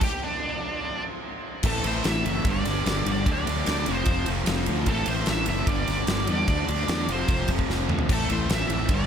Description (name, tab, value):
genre	classic rock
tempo	149 BPM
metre	4/4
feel	straight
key	A minor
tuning	A4 = 442 Hz
part	octave-fuzz lead guitar	melody	0.0-9.1 s	D4 to E5	-30 LUFS	right 2 dB	wah, distortion, tape echo
part	crunchy overdriven guitar	riff	0.0-9.1 s	F2 to D4	-32 LUFS	equal	none
part	huge arena drum kit	drums	0.0-9.0 s	crash cymbal, kick drum, ride cymbal, snare drum, toms	-27 LUFS	equal	none
part	crunchy overdriven guitar	riff	1.6-9.1 s	G2 to F4	-32 LUFS	left 12 dB	none
part	distorted electric guitar	riff	1.6-9.1 s	F2 to D4	-32 LUFS	right 13 dB	distortion
part	modern bright fingered electric bass	bass	1.6-9.1 s	F1 to E2	-29 LUFS	equal	none
room	little or no reverb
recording	none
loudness	-22 LUFS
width	side -8 dB against mid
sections	0.0-1.6 A section; 1.6-9.1 B section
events	lead electric guitar solo 0.0-1.6; stop 0.0-1.6; drum fill 7.7-8.1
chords	0.0 N.C.; 1.6 Am; 2.5 G; 3.3 D; 3.9 F; 4.9 Am; 5.7 G; 6.5 D; 7.1 F; 8.1 Am